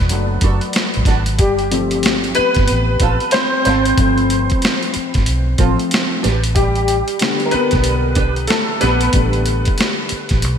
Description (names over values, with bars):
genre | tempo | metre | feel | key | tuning
R&B, neo-soul | 93 BPM | 4/4 | swing 63% on 16ths | unclear | A4 = 443 Hz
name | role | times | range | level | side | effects
warm concert grand piano | accompaniment | 0.0-10.6 s | D3 to C5 | -17 LUFS | left 2 dB | ensemble chorus
vintage muted fingered electric bass | bass | 0.0-10.6 s | E1 to B1 | -18 LUFS | equal | none
boom bap sampler-style drum kit | drums | 0.1-10.6 s | hi-hat, kick drum, snare drum | -18 LUFS | equal | gated reverb
vintage hollow-body jazz guitar | second line | 0.4-9.0 s | C4 to B4 | -26 LUFS | right 8 dB | wah, lush chorus
room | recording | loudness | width
moderate lush hall reverb, RT60 2.4 s | bright 1980s-style digital production | -14 LUFS | side -8 dB against mid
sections
0.0-10.6 A section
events
grand piano solo 0.0-10.6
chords
0.0 E9sus4 (rootless); 1.4 G9sus4; 6.2 A9sus4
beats
0.10 0.75 | 1.39 2.04 2.69 3.33 | 3.98 4.62 5.26 5.91 | 6.56 7.20 7.85 8.49 | 9.14 9.78 10.43